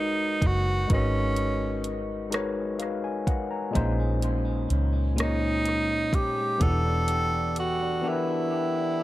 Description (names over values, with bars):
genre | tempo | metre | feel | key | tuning
slow six-eight R&B | 42 BPM (dotted quarters) | 6/8 | straight | unclear | A4 = 439 Hz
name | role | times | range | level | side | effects
breathy tenor saxophone | melody | 0.0-9.0 s | C#4 to A4 | -27 LUFS | right 1 dB | dub echo
overdriven tine electric piano | accompaniment | 0.0-9.0 s | A#2 to A#5 | -30 LUFS | left 3 dB | dub echo
vintage muted fingered electric bass | bass | 0.0-8.0 s | E1 to C#2 | -27 LUFS | equal | none
smooth R&B drum kit | drums | 0.4-7.8 s | hi-hat, kick drum, rim click | -28 LUFS | equal | none
electric guitar at the edge of break-up | second line | 3.7-9.0 s | A#2 to G4 | -34 LUFS | right 3 dB | dub echo
room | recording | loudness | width
light reverb | echo-heavy mix | -24 LUFS | side -16 dB against mid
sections
0.0-9.0 A section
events
none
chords
0.0 G#m11; 3.8 A#m11; 6.6 Em11